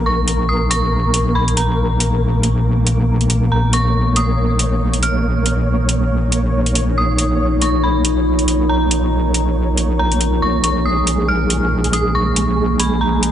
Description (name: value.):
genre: deep dubstep.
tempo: 139 BPM.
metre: 4/4.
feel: swing 58% on 16ths, half-time.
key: Bb phrygian.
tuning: A4 = 439 Hz.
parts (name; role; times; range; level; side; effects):
overtone-sweeping drone; sustained chords; 0.0-13.3 s; Bb2 to Eb4; -20 LUFS; equal; chorus, built-in reverb.
wobble bass; bass; 0.0-13.3 s; Bb1; -18 LUFS; equal; chorus.
flickering grainy texture; texture; 0.0-13.3 s; Ab3 to Db5; -22 LUFS; right 1 dB; built-in reverb.
dark detuned synth bell; melody; 0.1-13.3 s; Bb5 to F6; -22 LUFS; equal; chorus, dub echo.
electronic hi-hat; drums; 0.3-13.3 s; none; -20 LUFS; equal; none.
room: light reverb.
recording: nothing above 10.4 kHz.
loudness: -14 LUFS.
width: side -10 dB against mid.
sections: 0.0-13.3 A section.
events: none.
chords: 0.0 Bb5.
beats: | 0.06 0.49 0.93 1.36 | 1.79 2.22 2.65 3.08 | 3.52 3.95 4.38 4.81 | 5.24 5.67 6.11 6.54 | 6.97 7.40 7.83 8.26 | 8.70 9.13 9.56 9.99 | 10.42 10.85 11.29 11.72 | 12.15 12.58 13.01.